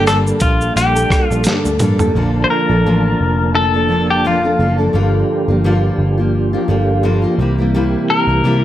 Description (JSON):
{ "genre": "indie pop, bedroom pop", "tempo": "86 BPM", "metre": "4/4", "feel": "swing 55% on 16ths", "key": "unclear", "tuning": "A4 = 439 Hz", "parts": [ { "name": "clean electric guitar", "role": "melody", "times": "0.0-8.6 s", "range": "F4 to C5", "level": "-17 LUFS", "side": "left 2 dB", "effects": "lush chorus, slapback echo" }, { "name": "mellow tonewheel organ", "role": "accompaniment", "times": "0.0-8.6 s", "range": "E3 to A5", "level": "-20 LUFS", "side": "right 3 dB", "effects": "chorus vibrato, slow rotary speaker, cassette tape" }, { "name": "picked steel-string acoustic guitar", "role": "accompaniment", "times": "0.0-8.6 s", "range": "G2 to A4", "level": "-18 LUFS", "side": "left 2 dB", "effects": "lush chorus, vibrato effect" }, { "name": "vintage muted picked electric bass", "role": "bass", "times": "0.0-8.6 s", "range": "F1 to G2", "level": "-17 LUFS", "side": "equal", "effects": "none" }, { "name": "dusty soul sampler-style drum kit", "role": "drums", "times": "0.1-2.1 s", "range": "hi-hat, kick drum, rim click, shaker, snare drum, toms", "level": "-17 LUFS", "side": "right 1 dB", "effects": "none" } ], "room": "digital ambience", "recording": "none", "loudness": "-12 LUFS", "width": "side -12 dB against mid", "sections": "0.0-2.2 A section; 2.2-8.6 B section", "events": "drum fill 1.5-2.2", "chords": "0.0 Gmadd9; 2.2 Bbmaj7; 4.9 Gm7; 7.4 C7", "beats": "0.06 0.76 1.46 | 2.15 2.85 3.55 4.25 | 4.95 5.64 6.34 7.04 | 7.74 8.44" }